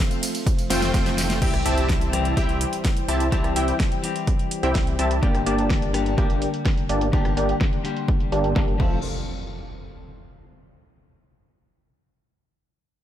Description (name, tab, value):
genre	EDM, festival progressive house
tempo	126 BPM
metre	4/4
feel	straight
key	unclear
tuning	A4 = 440 Hz
part	lush unison pad	sustained chords	0.0-9.0 s	F3 to C6	-35 LUFS	right 1 dB	chorus, sidechain pumping
part	pop drum kit	drums	0.1-8.9 s	crash cymbal, hi-hat, ride cymbal, rim click, snare drum, tambourine	-30 LUFS	right 1 dB	low-pass filter on hats, low-pass filter on perc, low-pass filter on snare, low-pass filter on cymbals
part	electronic kick drum	drums	0.5-8.9 s	none	-22 LUFS	equal	none
part	supersaw stab	riff	0.7-9.0 s	A3 to A5	-26 LUFS	equal	sidechain pumping, low-pass filter, ping-pong delay
part	wide detuned saw bass	bass	0.7-9.0 s	F1 to C2	-26 LUFS	equal	chorus, sidechain pumping
part	clean electric guitar	accompaniment	1.4-9.0 s	D3 to A4	-29 LUFS	left 5 dB	sidechain pumping, ping-pong delay
part	impact	sound effects	1.4-3.3, 8.8-10.7 s	none	-34 LUFS	equal	none
room	light reverb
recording	none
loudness	-20 LUFS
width	side -11 dB against mid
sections	0.0-1.4 A section; 1.4-9.0 B section; 9.0-10.9 C section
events	drop 0.0-1.4; drum fill 0.7-1.4; impact 1.4-3.3; filter sweep on drum 1.4-9.0; filter sweep on supersaw synth 1.4-9.0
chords	0.0 F; 1.4 C; 5.2 Gm; 8.8 F; 9.0 N.C.